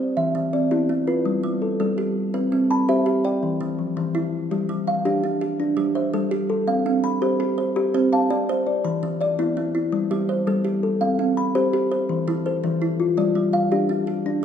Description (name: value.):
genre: southern african traditional.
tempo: 111 BPM (dotted quarters).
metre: 12/8.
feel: straight.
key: G mixolydian.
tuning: A4 = 440 Hz.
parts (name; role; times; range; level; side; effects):
kalimba; arpeggios; 0.0-14.4 s; E3 to B5; -23 LUFS; right 4 dB; none.
kalimba; arpeggios; 0.2-14.4 s; E3 to B5; -22 LUFS; left 4 dB; none.
room: wet recital hall reverb, RT60 1.8 s.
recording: minimal, uncompressed stereo recording.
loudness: -20 LUFS.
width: side -8 dB against mid.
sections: 0.0-4.5 A section; 4.5-14.4 B section.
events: none.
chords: 0.2 Em; 1.3 G; 2.3 C; 3.4 Em; 4.5 G5; 6.7 C5; 8.8 E5; 9.9 Am7/G; 11.0 C5; 12.1 Fmaj7/E; 13.2 G5.